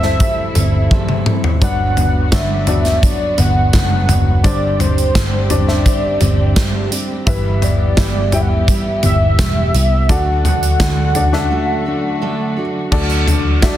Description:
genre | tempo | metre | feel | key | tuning
piano-driven pop | 85 BPM | 4/4 | straight | unclear | A4 = 440 Hz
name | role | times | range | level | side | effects
warm velvety synth lead | melody | 0.0-13.8 s | B4 to F#5 | -21 LUFS | equal | chorus
dark baby grand piano | accompaniment | 0.0-13.8 s | G2 to G5 | -24 LUFS | left 5 dB | none
warm symphonic string section | sustained chords | 0.0-13.8 s | C3 to G4 | -28 LUFS | left 1 dB | none
picked steel-string acoustic guitar | riff | 0.0-13.8 s | G2 to B4 | -23 LUFS | right 4 dB | none
vintage muted picked electric bass | bass | 0.0-13.8 s | E1 to D2 | -17 LUFS | equal | none
modern studio drum kit | drums | 0.0-13.8 s | crash cymbal, hi-hat, kick drum, snare drum, toms | -16 LUFS | equal | none
room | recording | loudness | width
little or no reverb | dense, heavily limited modern master | -12 LUFS | side -12 dB against mid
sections
0.0-12.9 A section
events
drum fill 0.9-1.6; break 11.5-12.9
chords
0.0 Am/G; 1.6 Bm/G; 4.4 Csus2/G; 7.3 Em/G; 10.1 D

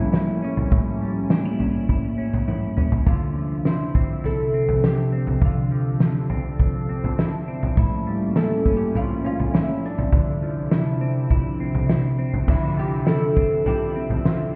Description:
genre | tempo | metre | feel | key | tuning
dream pop | 102 BPM | 4/4 | straight | D minor | A4 = 438 Hz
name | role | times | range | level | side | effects
oud | melody | 0.0-14.6 s | C#4 to C5 | -31 LUFS | equal | digital delay
phased analog pad | sustained chords | 0.0-14.6 s | C3 to E5 | -28 LUFS | equal | phaser, chorus
semi-hollow electric guitar | arpeggios | 0.0-14.6 s | A2 to E4 | -30 LUFS | equal | subtle chorus, digital delay
loose indie drum kit | drums | 0.1-14.4 s | crash cymbal, kick drum, snare drum, toms | -25 LUFS | equal | none
clean electric guitar | accompaniment | 12.5-14.6 s | D3 to E4 | -32 LUFS | equal | tremolo, analog chorus
room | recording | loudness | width
light reverb, small room ambience | heard muffled through a wall, stone room reverb, EQ | -22 LUFS | mono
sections
0.0-12.5 A section; 12.5-14.6 A section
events
drum fill 2.5-3.1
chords
0.0 A7b9b13; 3.1 Dm9; 7.8 A7b9b13; 10.1 Dm9

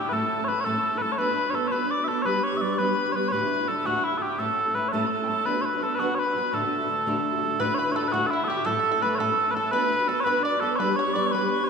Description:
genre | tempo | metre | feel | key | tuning
celtic folk, Celtic jig | 112 BPM (dotted quarters) | 6/8 | straight | D major | A4 = 439 Hz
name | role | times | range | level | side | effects
mellow small bagpipes | melody | 0.0-11.7 s | E4 to E5 | -24 LUFS | equal | none
bright wooden whistle | second line | 0.0-11.7 s | E5 to D6 | -34 LUFS | left 4 dB | none
fingerpicked steel-string acoustic guitar | accompaniment | 0.0-11.7 s | D2 to B4 | -28 LUFS | equal | none
bluegrass banjo | second line | 7.6-11.7 s | E4 to D5 | -33 LUFS | right 2 dB | none
room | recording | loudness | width
wet church reverb, RT60 2.9 s | recorded in a church or concert hall | -22 LUFS | side -5 dB against mid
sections
0.0-7.6 A section; 7.6-11.7 A section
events
none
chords
0.1 A; 1.2 Bm; 2.3 G; 3.3 Dadd9; 4.4 A; 5.5 Bm; 6.5 D; 7.6 Dadd9; 8.7 A; 9.7 Bm; 10.8 G

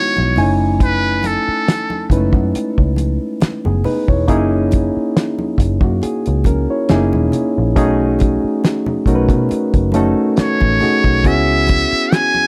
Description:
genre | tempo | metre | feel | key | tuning
R&B, neo-soul | 69 BPM | 4/4 | swing 54% on 16ths | unclear | A4 = 440 Hz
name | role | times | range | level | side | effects
trumpet with metal mute | melody | 0.0-2.1, 10.4-12.5 s | A4 to G#5 | -19 LUFS | equal | none
reed electric piano | accompaniment | 0.0-12.5 s | G#3 to G#5 | -19 LUFS | equal | overdrive
vintage muted picked electric bass | bass | 0.2-12.0 s | E1 to B2 | -20 LUFS | equal | none
congas | percussion | 0.2-12.5 s | none | -30 LUFS | equal | none
cloth-damped thuddy drum kit | drums | 0.4-12.3 s | hi-hat, kick drum, snare drum | -18 LUFS | equal | none
room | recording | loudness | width
light reverb | none | -16 LUFS | mono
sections
0.0-12.5 A section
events
none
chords
0.4 F#m9; 4.3 F#9; 6.9 F#7; 7.8 B9; 11.2 C#m7

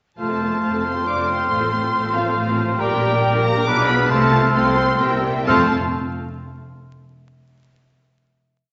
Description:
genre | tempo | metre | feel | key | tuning
classical, dramatic, fast romantic movement for symphony orchestra | 136 BPM | 3/4 | uneven beats | F major | A4 = 438 Hz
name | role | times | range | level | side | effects
warm symphonic violin section | melody | 0.2-5.7 s | F5 to D6 | -28 LUFS | equal | none
clear oboe | second line | 0.2-5.7 s | Bb4 to C5 | -25 LUFS | equal | none
rich studio violin section | second line | 0.2-5.7 s | G4 to A5 | -35 LUFS | equal | none
silver concert flute | second line | 0.2-5.7 s | D6 to F6 | -28 LUFS | equal | none
warm clarinet | second line | 0.2-5.7 s | F4 to Bb4 | -32 LUFS | equal | none
warm symphonic viola section | accompaniment | 0.2-5.7 s | A3 to Bb4 | -27 LUFS | equal | none
mellow French horn section | sustained chords | 0.2-5.7 s | F3 to D4 | -28 LUFS | equal | none
warm symphonic cello section | bass | 0.2-5.7 s | F2 to C3 | -30 LUFS | equal | none
warm symphonic double bass section | bass | 0.2-5.7 s | F1 to C2 | -30 LUFS | equal | none
timpani | percussion | 4.1-5.7 s | F2 to C3 | -30 LUFS | equal | none
room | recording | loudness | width
wet scoring stage reverb, RT60 1.7 s | vinyl crackle, nothing above 7.8 kHz | -19 LUFS | mono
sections
0.2-5.5 A section; 5.5-6.9 final chord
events
none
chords
0.2 F; 1.5 F/A; 2.8 Gm/Bb; 3.7 Bdim7; 4.1 F/C; 5.0 C7; 5.5 F

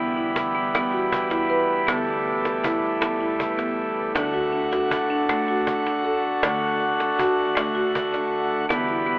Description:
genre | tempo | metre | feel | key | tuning
world meditative, meditative tuned percussion | 53 BPM (dotted quarters) | 6/8 | straight | D major | A4 = 440 Hz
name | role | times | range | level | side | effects
pipe organ, principal chorus | sustained chords | 0.0-9.2 s | D3 to F#4 | -23 LUFS | equal | none
marimba with soft mallets | arpeggios | 0.0-9.2 s | D3 to B4 | -26 LUFS | equal | none
cajon | percussion | 0.4-8.9 s | none | -30 LUFS | right 1 dB | none
room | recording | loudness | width
wet huge ambient reverb, RT60 8.1 s | dreamy mix soaked in reverb, telephone sound | -20 LUFS | side -22 dB against mid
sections
0.0-9.2 A section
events
none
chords
0.0 Em/D; 4.2 D

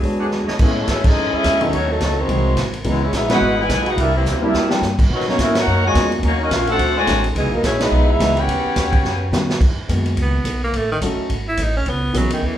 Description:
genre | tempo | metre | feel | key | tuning
jazz, big band swing | 213 BPM | 4/4 | swing 59% on 8ths | G# minor | A4 = 439 Hz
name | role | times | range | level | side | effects
mellow saxophone section | melody | 0.0-9.3 s | E3 to G#5 | -20 LUFS | left 2 dB | none
bright trombone section | second line | 0.0-9.3 s | A2 to G4 | -24 LUFS | right 3 dB | none
warm concert grand piano | accompaniment | 0.0-12.6 s | D#3 to C#5 | -23 LUFS | left 1 dB | none
upright bass | bass | 0.0-12.6 s | G1 to B2 | -22 LUFS | equal | none
vintage drum kit | drums | 0.0-12.5 s | crash cymbal, hi-hat, kick drum, ride cymbal, snare drum | -22 LUFS | equal | none
clear trumpet section | stabs | 0.2-0.6 s | D4 to F#5 | -28 LUFS | right 1 dB | none
clear tenor saxophone | melody | 10.2-12.6 s | D#3 to E4 | -22 LUFS | right 1 dB | none
room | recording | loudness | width
wet large studio reverb, RT60 0.9 s | band playing live in one room | -15 LUFS | side -11 dB against mid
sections
0.6-9.6 A section; 9.6-12.6 B section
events
drum fill 0.3, 4.3-4.8, 9.0-9.6; band accent 1.0, 3.3, 5.5, 7.8; tenor saxophone solo 9.6-12.6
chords
0.0 E13; 0.6 Amaj7; 1.7 D#m7b5; 2.3 G#7b13; 2.9 C#m9; 4.0 C9; 5.1 Bmaj9; 6.2 D#m7; 6.8 D7#11; 7.4 C#m11; 8.5 D#7alt; 9.6 G#m7; 10.7 D#m7b5; 11.3 Amaj7(no3)/G#; 11.9 C#m7

